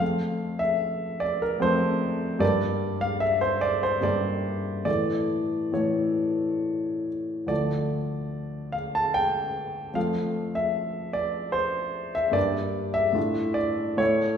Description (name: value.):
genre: classical, romantic character piece for solo piano.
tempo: 68-76 BPM.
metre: 3/4.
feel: rubato.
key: D minor.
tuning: A4 = 439 Hz.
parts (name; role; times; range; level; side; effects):
warm grand piano; solo; 0.0-14.4 s; D2 to A5; -24 LUFS; equal; none.
room: wet recital hall reverb, RT60 1.4 s.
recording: heard from further back in the room.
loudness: -24 LUFS.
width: side -8 dB against mid.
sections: 0.0-14.4 A section.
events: none.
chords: 0.0 F; 2.4 Gm; 4.9 A; 7.5 Dm; 10.0 F; 12.4 Gm; 13.2 Dm/A.